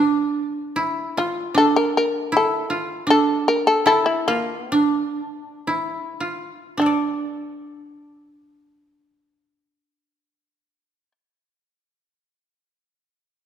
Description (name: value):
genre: japanese traditional, Japanese chamber music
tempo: 48-79 BPM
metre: 2/4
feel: rubato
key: D hirajoshi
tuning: A4 = 440 Hz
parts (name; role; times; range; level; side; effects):
- koto; second line; 0.0-11.2 s; D4 to D5; -21 LUFS; right 3 dB; none
- shamisen; melody; 1.2-11.1 s; D4 to Bb4; -20 LUFS; left 2 dB; none
room: moderate concert hall reverb, RT60 1.9 s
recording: none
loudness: -19 LUFS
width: side -9 dB against mid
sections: 0.0-6.8 A section; 6.8-11.7 B section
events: slowing down 3.1-6.8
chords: none